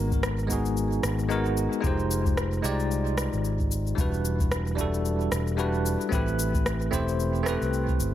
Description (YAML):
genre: sunset chillout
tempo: 112 BPM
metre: 4/4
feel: swing 57% on 16ths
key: unclear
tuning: A4 = 440 Hz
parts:
  - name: bell-like tine electric piano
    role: accompaniment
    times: 0.0-8.1 s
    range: G3 to D5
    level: -28 LUFS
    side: equal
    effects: auto-pan, analog delay
  - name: fingered electric bass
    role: bass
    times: 0.0-8.1 s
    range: E1 to C2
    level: -28 LUFS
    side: equal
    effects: none
  - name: electronic cabasa and rim click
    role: drums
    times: 0.1-8.1 s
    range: none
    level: -33 LUFS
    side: left 1 dB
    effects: overdrive
  - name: electronic kick drum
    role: drums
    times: 0.1-8.0 s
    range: none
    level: -28 LUFS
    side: equal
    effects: none
room: moderate spring reverb, RT60 1.4 s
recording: echo-heavy mix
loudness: -24 LUFS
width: side -12 dB against mid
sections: 0.0-8.1 A section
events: none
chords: 0.0 G#m9; 1.8 Fm9; 4.0 Em9; 6.1 Am9